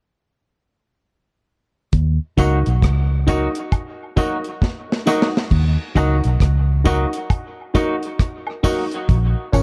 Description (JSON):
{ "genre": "dub reggae", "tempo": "67 BPM", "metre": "4/4", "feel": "swing 62% on 16ths", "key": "Eb minor", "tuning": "A4 = 440 Hz", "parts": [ { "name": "vintage muted fingered electric bass", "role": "bass", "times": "1.9-9.6 s", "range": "Ab1 to Eb2", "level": "-19 LUFS", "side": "equal", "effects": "none" }, { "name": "deep reggae drum kit", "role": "drums", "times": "1.9-9.6 s", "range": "crash cymbal, hi-hat, kick drum, rim click, snare drum", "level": "-21 LUFS", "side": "equal", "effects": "none" }, { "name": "clean electric guitar", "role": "accompaniment", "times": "2.4-8.8 s", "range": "Gb3 to Gb4", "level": "-28 LUFS", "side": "equal", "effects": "dub echo" }, { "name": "dark upright piano", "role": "stabs", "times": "2.4-9.6 s", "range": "Db4 to Eb5", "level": "-27 LUFS", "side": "equal", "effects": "dub echo" }, { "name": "tambourine and woodblock", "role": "percussion", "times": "2.4-9.6 s", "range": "none", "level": "-36 LUFS", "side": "equal", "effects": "dub echo" } ], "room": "light reverb, small room ambience", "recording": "dark, warm production", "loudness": "-19 LUFS", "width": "mono", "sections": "1.9-5.5 A section; 5.5-9.6 B section", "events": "drum fill 4.6-5.5", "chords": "1.9 Ebm; 9.1 Bbm" }